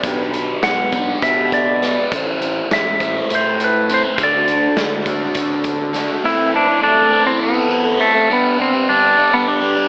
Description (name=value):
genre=psychedelic rock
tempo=204 BPM (eighths)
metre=7/8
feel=straight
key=A dorian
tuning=A4 = 440 Hz
part: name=crunchy overdriven guitar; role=riff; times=0.0-9.9 s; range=G2 to C5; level=-19 LUFS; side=equal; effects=phaser
part: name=fuzz picked electric bass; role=bass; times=0.0-6.1 s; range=A1 to D3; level=-24 LUFS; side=equal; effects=overdrive
part: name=raw garage drum kit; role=drums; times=0.0-6.1 s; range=hi-hat, kick drum, snare drum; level=-24 LUFS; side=equal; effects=tape echo
part: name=clean lap steel guitar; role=melody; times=0.6-9.9 s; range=A3 to F#5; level=-15 LUFS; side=equal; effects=tape echo
room=moderate spring reverb, RT60 2.6 s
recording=echo-heavy mix, AM radio sound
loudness=-13 LUFS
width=side -38 dB against mid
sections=0.0-6.2 A section; 6.2-9.9 B section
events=none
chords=0.1 G/B; 2.1 Am; 4.2 D; 6.2 Am; 8.3 G